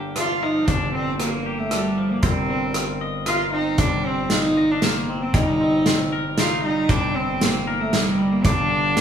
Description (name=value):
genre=post-rock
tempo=116 BPM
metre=3/4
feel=straight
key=G minor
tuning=A4 = 440 Hz
part: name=pedal steel guitar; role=sustained chords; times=0.0-9.0 s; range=G4 to D6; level=-34 LUFS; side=equal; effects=none
part: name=twangy electric guitar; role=arpeggios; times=0.0-9.0 s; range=G2 to Eb5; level=-29 LUFS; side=left 3 dB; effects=none
part: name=growling picked electric bass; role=bass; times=0.0-9.0 s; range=G1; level=-29 LUFS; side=right 2 dB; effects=overdrive
part: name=rich cello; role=melody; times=0.2-9.0 s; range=G3 to F4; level=-22 LUFS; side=equal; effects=none
part: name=loose indie drum kit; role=drums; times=0.2-9.0 s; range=hi-hat, kick drum, rim click, snare drum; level=-23 LUFS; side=equal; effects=none
room=moderate large studio reverb, RT60 1.4 s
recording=band playing live in one room, studio reverb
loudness=-19 LUFS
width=side -8 dB against mid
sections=0.0-9.0 A section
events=none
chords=0.0 Gm7; 2.2 F7sus4/G; 5.3 Cm7/G; 8.4 Gm7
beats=0.16 | 0.68 1.20 1.72 | 2.23 2.75 3.27 | 3.79 4.30 4.82 | 5.34 5.86 6.37 | 6.89 7.41 7.93 | 8.45 8.96